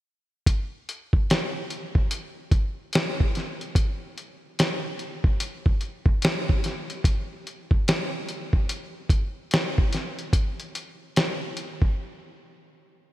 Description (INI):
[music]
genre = R&B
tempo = 73 BPM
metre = 4/4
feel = swing 62% on 16ths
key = none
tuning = none
[part]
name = dusty soul sampler-style drum kit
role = drums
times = 0.5-12.0 s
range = hi-hat, kick drum, snare drum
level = -22 LUFS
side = equal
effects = gated reverb
[sound]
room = light reverb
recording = bright 1980s-style digital production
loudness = -23 LUFS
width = side -15 dB against mid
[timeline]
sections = 0.5-13.1 A section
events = break 12.0-13.1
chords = none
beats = | 0.47 1.29 2.11 2.94 | 3.76 4.58 5.40 6.22 | 7.04 7.87 8.69 9.51 | 10.33 11.15